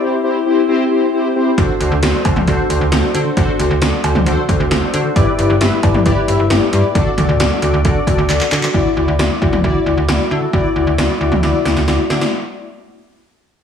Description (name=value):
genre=synth-pop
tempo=134 BPM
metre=4/4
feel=straight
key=D mixolydian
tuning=A4 = 440 Hz
part: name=mellow synth brass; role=accompaniment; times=0.0-12.2 s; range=C4 to E5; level=-16 LUFS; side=left 2 dB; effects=chorus
part: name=slap-like FM bass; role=bass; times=1.6-12.2 s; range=G1 to D3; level=-17 LUFS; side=right 1 dB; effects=none
part: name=80s electronic pad drums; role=drums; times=1.6-12.3 s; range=cowbell, handclaps, hi-hat, kick drum, snare drum, toms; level=-17 LUFS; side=equal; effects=gated reverb on snare and toms
room=moderate plate reverb, RT60 1.4 s, digital ambience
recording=heavily compressed radio sound, small room ambience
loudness=-12 LUFS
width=side -8 dB against mid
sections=0.0-8.7 A section; 8.7-12.3 B section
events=drum fill 8.3-8.7, 11.4-12.3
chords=0.0 C; 1.6 D7; 5.2 G6; 7.0 D; 8.7 Dadd9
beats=0.24 0.68 1.13 | 1.58 2.03 2.48 2.92 | 3.37 3.82 4.27 4.71 | 5.16 5.61 6.06 6.50 | 6.95 7.40 7.85 8.29 | 8.74 9.19 9.64 10.09 | 10.53 10.98 11.43 11.88